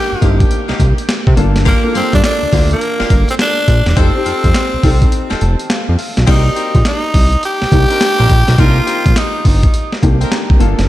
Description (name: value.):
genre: R&B, new jack swing.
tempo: 104 BPM.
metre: 4/4.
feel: swing 64% on 16ths.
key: C dorian.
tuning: A4 = 439 Hz.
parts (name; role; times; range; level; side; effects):
growling tenor saxophone; melody; 0.0-10.0 s; Bb3 to G4; -18 LUFS; equal; diffuse ambient delay.
warm concert grand piano; accompaniment; 0.0-10.9 s; Bb3 to Bb5; -21 LUFS; left 3 dB; wide subtle chorus.
fat analog bass; bass; 0.1-10.9 s; E1 to C3; -13 LUFS; equal; none.
warm horn section; stabs; 0.2-10.3 s; Bb3 to Bb4; -24 LUFS; left 2 dB; diffuse ambient delay.
breakbeat sampler-style drum kit; drums; 0.2-10.9 s; crash cymbal, handclaps, hi-hat, kick drum, snare drum; -14 LUFS; equal; vintage 12-bit sampler grit.
room: light reverb, small room ambience.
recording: none.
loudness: -10 LUFS.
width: side -15 dB against mid.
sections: 0.0-6.3 A section; 6.3-10.9 B section.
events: break 5.1-6.3; grand piano fill 5.1-6.3, 10.0-10.9.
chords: 0.0 Cm7; 1.4 Gm7; 4.0 F7; 6.3 Cm7.